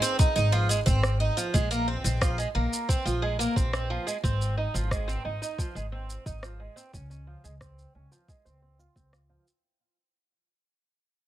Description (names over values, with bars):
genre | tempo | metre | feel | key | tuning
folktronica | 89 BPM | 4/4 | straight | unclear | A4 = 441 Hz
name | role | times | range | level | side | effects
picked twelve-string acoustic guitar | arpeggios | 0.0-9.4 s | F3 to F4 | -30 LUFS | right 2 dB | low-pass filter, tape echo, plate reverb
electronic shaker and rim click | drums | 0.0-9.6 s | none | -32 LUFS | equal | small room ambience
electronic kick drum | drums | 0.2-9.1 s | none | -25 LUFS | equal | small room ambience
upright bass | bass | 0.4-9.4 s | Ab1 to Db2 | -29 LUFS | equal | none
room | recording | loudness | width
little or no reverb | none | -24 LUFS | side -13 dB against mid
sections
0.0-9.6 A section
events
fade-out 0.0-9.6; filter sweep on twelve-string acoustic guitar 0.0-9.6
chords
0.0 Ab6; 1.5 Bbsus2; 4.2 Ab6; 6.9 Dbmaj7